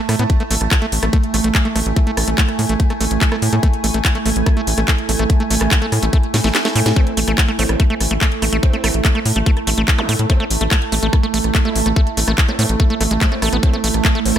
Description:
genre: psychedelic trance.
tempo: 144 BPM.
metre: 4/4.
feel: straight.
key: A harmonic minor.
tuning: A4 = 441 Hz.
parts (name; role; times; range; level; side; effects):
evolving wavetable pad; sustained chords; 0.0-14.4 s; A3; -24 LUFS; right 5 dB; chorus, built-in reverb, sidechain pumping.
deep dark ambient pad; texture; 0.0-14.4 s; E4 to A5; -25 LUFS; right 2 dB; chorus, built-in reverb, sidechain pumping.
overdriven acid bass; riff; 0.1-14.4 s; G#3 to B3; -23 LUFS; right 1 dB; distortion, auto-pan, vintage 12-bit sampler grit, sidechain pumping, tape echo.
tight sequencer bass; bass; 0.1-14.4 s; A1 to A2; -19 LUFS; equal; none.
garage drum kit; drums; 0.1-14.4 s; handclaps, hi-hat, rim click, snare drum; -20 LUFS; left 1 dB; none.
electronic kick drum; drums; 0.3-14.1 s; none; -15 LUFS; equal; none.
formant-sweep wobble bass; second line; 7.0-14.4 s; C4 to E4; -32 LUFS; right 3 dB; lush chorus, sidechain pumping, high-pass filter, tape echo.
zap; sound effects; 10.0-10.1 s; none; -28 LUFS; equal; none.
room: digital ambience.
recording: none.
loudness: -14 LUFS.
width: side -10 dB against mid.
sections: 0.0-14.4 A section.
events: drum fill 6.3-7.0; kick drops out 6.5-7.0.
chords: 0.0 A5.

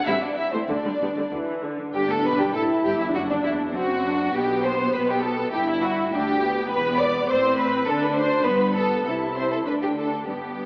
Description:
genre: quick classical-period movement for string orchestra.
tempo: 100 BPM.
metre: 2/4.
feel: straight.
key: G major.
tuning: A4 = 440 Hz.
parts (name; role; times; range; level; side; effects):
muted symphonic violin section; melody; 0.0-10.7 s; C5 to D6; -30 LUFS; equal; none.
muted symphonic violin section; second line; 0.1-10.7 s; C4 to D5; -24 LUFS; equal; none.
muted symphonic viola section; accompaniment; 0.1-10.7 s; C3 to E4; -25 LUFS; equal; none.
muted symphonic cello section; bass; 0.1-10.7 s; D2 to D3; -31 LUFS; equal; none.
muted symphonic double bass section; bass; 0.1-10.7 s; E1 to D2; -35 LUFS; equal; none.
room: wet concert hall reverb, RT60 1.7 s.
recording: AM radio sound.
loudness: -20 LUFS.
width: side -33 dB against mid.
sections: 0.0-1.9 A section; 1.9-10.7 B section.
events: none.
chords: 0.1 Am; 0.7 G5/D; 1.3 Dsus2; 1.9 G; 3.1 D; 4.3 Am9/B; 5.5 G5; 6.7 E5; 7.3 Am; 7.9 Amadd11/D; 8.5 G; 9.1 Am/C; 9.7 D5.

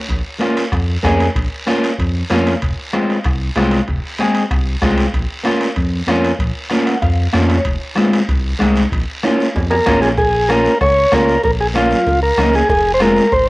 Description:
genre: latin, cumbia.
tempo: 190 BPM.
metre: 4/4.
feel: straight.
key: Bb minor.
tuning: A4 = 441 Hz.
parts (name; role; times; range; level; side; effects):
smooth synth bass; bass; 0.1-13.5 s; F1 to F2; -19 LUFS; equal; none.
bombo; percussion; 0.1-13.5 s; none; -22 LUFS; equal; none.
congas; percussion; 0.1-13.5 s; none; -25 LUFS; left 1 dB; none.
guiro; percussion; 0.1-13.5 s; none; -28 LUFS; right 1 dB; none.
timbales and cowbell; percussion; 0.1-13.5 s; none; -26 LUFS; right 2 dB; none.
electric guitar at the edge of break-up; accompaniment; 0.4-13.2 s; Ab3 to Gb5; -17 LUFS; equal; cassette tape.
combo organ; melody; 9.7-13.5 s; F4 to Db5; -14 LUFS; equal; none.
room: light reverb, small room ambience.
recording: home recording on cassette.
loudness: -13 LUFS.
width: side -20 dB against mid.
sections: 0.1-10.2 A section; 10.2-13.5 B section.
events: clean electric guitar fill 6.7-7.7; drum fill 9.2-10.2.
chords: 0.1 Bbm; 2.6 Fm; 5.1 Bbm; 7.7 Fm; 8.9 Bbm; 12.7 Fm.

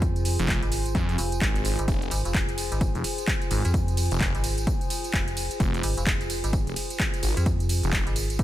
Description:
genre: bass house.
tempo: 129 BPM.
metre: 4/4.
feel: swing 61% on 16ths.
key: F minor.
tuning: A4 = 437 Hz.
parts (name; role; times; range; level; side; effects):
metallic FM bass; bass; 0.0-8.4 s; F1 to F2; -27 LUFS; equal; overdrive, sidechain pumping.
electronic kick drum; drums; 0.0-8.4 s; none; -27 LUFS; equal; overdrive.
house drum kit; drums; 0.0-8.4 s; handclaps, hi-hat, ride cymbal, tambourine; -30 LUFS; right 1 dB; overdrive.
warbly tape-like pad; texture; 0.0-8.4 s; F4 to Ab5; -33 LUFS; equal; chorus, built-in reverb, sidechain pumping.
phased detuned saw bass; bass; 0.4-8.0 s; F1 to F2; -27 LUFS; equal; phaser, tube saturation, sidechain pumping.
room: little or no reverb.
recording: none.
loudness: -23 LUFS.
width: side -13 dB against mid.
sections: 0.0-8.4 A section.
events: none.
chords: 0.0 Fm.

